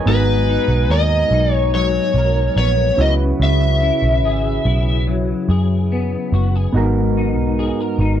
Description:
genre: indie pop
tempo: 72 BPM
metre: 4/4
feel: straight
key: G# minor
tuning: A4 = 439 Hz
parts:
  - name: clean electric guitar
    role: accompaniment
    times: 0.0-8.2 s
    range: G#2 to A#4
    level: -22 LUFS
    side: left 5 dB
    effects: ensemble chorus, vibrato effect
  - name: soft electric-piano-like synth keys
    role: accompaniment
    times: 0.0-8.2 s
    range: B3 to A#5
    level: -24 LUFS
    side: right 5 dB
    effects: chorus
  - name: overdriven slide guitar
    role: melody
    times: 0.1-5.0 s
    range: B4 to E5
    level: -19 LUFS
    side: left 1 dB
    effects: lush chorus, slapback echo
  - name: vintage muted picked electric bass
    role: bass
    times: 0.1-8.2 s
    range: F#1 to F#2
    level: -17 LUFS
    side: equal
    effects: none
room: little or no reverb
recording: dry, close 1970s-style studio recording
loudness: -14 LUFS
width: side -10 dB against mid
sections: 0.0-8.2 A section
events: none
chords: 0.1 G#m9; 3.0 C#m7; 6.7 G#m9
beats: | 0.06 0.90 1.73 2.56 | 3.40 4.23 5.07 5.90 | 6.74 7.57

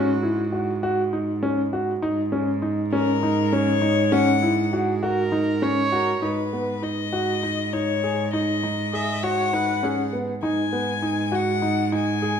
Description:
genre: contemporary instrumental, chamber music in an uneven meter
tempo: 200 BPM (eighths)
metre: 7/8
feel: straight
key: G# minor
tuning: A4 = 440 Hz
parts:
  - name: clear viola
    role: second line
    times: 0.0-0.8, 4.7-10.3 s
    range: F#4 to D#5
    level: -28 LUFS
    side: right 4 dB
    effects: none
  - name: warm concert grand piano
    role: arpeggios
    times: 0.0-12.4 s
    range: B3 to G#4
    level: -23 LUFS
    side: equal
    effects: none
  - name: clear cello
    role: bass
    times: 0.0-12.4 s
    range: G#2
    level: -27 LUFS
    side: right 4 dB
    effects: none
  - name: rich violin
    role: melody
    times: 2.9-12.4 s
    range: A#4 to G#5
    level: -26 LUFS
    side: left 8 dB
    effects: none
room: wet recital hall reverb, RT60 1.4 s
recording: minimal, uncompressed stereo recording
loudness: -20 LUFS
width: side -7 dB against mid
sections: 0.0-6.2 A section; 6.2-12.4 B section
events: none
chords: 0.0 F#add9/G#; 6.2 G#7(no3)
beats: 0.22 0.52 0.82 1.12 1.42 1.72 | 2.02 2.33 2.63 2.93 3.23 3.53 3.83 | 4.13 4.43 4.73 5.03 5.33 5.63 5.93 | 6.23 6.54 6.83 7.13 7.43 7.74 8.04 | 8.34 8.64 8.94 9.24 9.54 9.84 10.13 | 10.44 10.73 11.04 11.33 11.63 11.93 12.23

